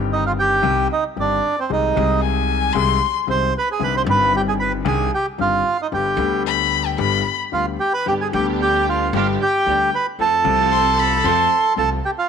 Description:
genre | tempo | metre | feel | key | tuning
tango | 113 BPM | 4/4 | rubato | C harmonic minor | A4 = 440 Hz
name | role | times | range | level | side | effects
warm concert grand piano | accompaniment | 0.0-12.0 s | G1 to A4 | -23 LUFS | left 10 dB | none
upright bass | bass | 0.0-12.0 s | G1 to F2 | -26 LUFS | right 2 dB | none
bandoneon | melody | 0.1-12.3 s | C4 to C6 | -18 LUFS | right 3 dB | none
warm violin | second line | 2.2-3.1, 6.5-7.4, 10.7-11.6 s | G5 to C6 | -21 LUFS | left 10 dB | none
dark studio string section | stabs | 8.1-12.0 s | B3 to A4 | -26 LUFS | right 11 dB | none
room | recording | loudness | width
light reverb | 1960s-style stereo with parts hard left and right | -16 LUFS | side -7 dB against mid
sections
0.0-12.3 A section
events
none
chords
0.0 Cm; 1.7 Ab/C; 3.8 Cmadd9; 5.9 G; 10.2 F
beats
0.10 0.63 1.17 | 1.70 2.23 2.75 3.28 | 3.80 4.33 4.86 5.39 | 5.92 6.46 6.99 7.53 | 8.07 8.61 9.14 9.67 | 10.19 10.72 11.24 11.77

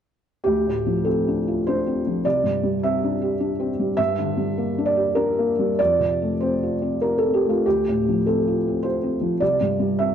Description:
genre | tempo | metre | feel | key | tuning
neoclassical minimalist piano | 102 BPM | 3/4 | rubato | D minor | A4 = 440 Hz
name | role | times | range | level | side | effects
felt-muted upright piano | solo | 0.4-10.1 s | C2 to E5 | -19 LUFS | equal | none
room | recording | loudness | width
moderate plate reverb, RT60 2.8 s | worn, warbling old tape, cassette tape, warbly pitch drift | -19 LUFS | side -8 dB against mid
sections
0.5-10.1 A section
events
none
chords
0.5 Dm7; 2.2 Cadd9; 4.0 Gm; 5.8 F; 7.7 Dm7; 9.4 Cadd9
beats
| 0.47 1.07 1.67 | 2.25 2.82 3.40 | 3.98 4.57 5.16 | 5.79 6.41 7.03 | 7.65 8.24 8.83 | 9.41 9.99

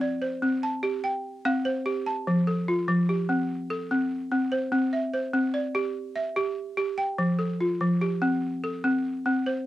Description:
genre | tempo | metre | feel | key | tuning
west african traditional | 97 BPM (dotted quarters) | 12/8 | straight | F major | A4 = 440 Hz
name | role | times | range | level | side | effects
balafon | solo | 0.0-9.7 s | F3 to A5 | -24 LUFS | equal | cassette tape
room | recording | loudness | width
wet booth ambience, RT60 0.2 s | home recording on cassette | -24 LUFS | side -15 dB against mid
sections
0.0-2.3 A section; 2.3-9.7 B section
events
none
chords
0.0 C5; 2.3 F; 4.7 C; 7.2 F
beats
0.41 1.03 1.64 | 2.25 2.87 3.48 4.10 | 4.71 5.33 5.95 6.57 | 7.18 7.80 8.42 9.04 | 9.65

